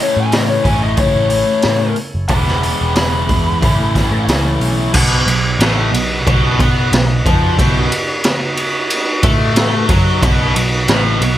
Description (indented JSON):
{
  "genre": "blues rock power trio and southern rock",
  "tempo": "91 BPM",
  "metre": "4/4",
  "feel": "straight",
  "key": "B mixolydian",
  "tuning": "A4 = 439 Hz",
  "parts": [
    { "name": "lead guitar through a small cranked amp", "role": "melody", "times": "0.0-4.2 s", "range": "C#5 to D6", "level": "-18 LUFS", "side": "left 3 dB", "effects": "overdrive, slapback echo" },
    { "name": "tonewheel organ", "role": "sustained chords", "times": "0.0-11.4 s", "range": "B3 to F#5", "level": "-26 LUFS", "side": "right 4 dB", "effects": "slow rotary speaker, overdrive" },
    { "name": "distorted electric guitar", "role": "riff", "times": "0.0-11.4 s", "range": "A2 to E4", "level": "-18 LUFS", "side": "left 1 dB", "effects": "overdrive" },
    { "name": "raw garage drum kit", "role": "drums", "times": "0.0-11.4 s", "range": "crash cymbal, hi-hat, kick drum, ride cymbal, snare drum", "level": "-15 LUFS", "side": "equal", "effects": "none" },
    { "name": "vintage muted picked electric bass", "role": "bass", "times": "0.2-11.4 s", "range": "E1 to B2", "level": "-17 LUFS", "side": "equal", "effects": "none" }
  ],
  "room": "light reverb",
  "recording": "none",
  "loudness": "-12 LUFS",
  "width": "side -13 dB against mid",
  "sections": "0.0-4.9 A section; 4.9-11.4 B section",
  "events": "none",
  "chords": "0.0 A; 2.3 E; 3.6 A; 4.9 B"
}